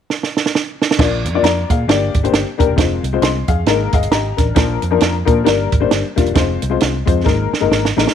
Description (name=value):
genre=uptempo 1960s-style soul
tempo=134 BPM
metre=4/4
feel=swing 59% on 8ths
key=Bb mixolydian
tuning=A4 = 441 Hz
part: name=compact cocktail drum kit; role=drums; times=0.1-8.1 s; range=crash cymbal, hi-hat, kick drum, snare drum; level=-16 LUFS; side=right 4 dB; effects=none
part: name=warm upright piano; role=accompaniment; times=1.0-8.1 s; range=F3 to C6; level=-17 LUFS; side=left 10 dB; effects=none
part: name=vintage muted fingered electric bass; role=bass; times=1.0-8.0 s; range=Eb1 to Bb2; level=-20 LUFS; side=right 1 dB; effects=none
room=light reverb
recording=1960s-style stereo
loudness=-13 LUFS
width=side -8 dB against mid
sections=1.0-8.1 A section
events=drum fill 0.1-1.0, 7.3-8.1; upright piano fill 3.7-4.6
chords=0.0 N.C.; 1.0 Bb; 1.9 Gm; 2.8 Fm; 3.7 Absus2; 4.6 Bb; 5.5 Gm; 6.4 Fm; 7.3 Absus2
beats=0.09 0.54 | 0.99 1.43 1.88 2.33 | 2.78 3.23 3.67 4.12 | 4.57 5.02 5.46 5.91 | 6.36 6.81 7.26 7.71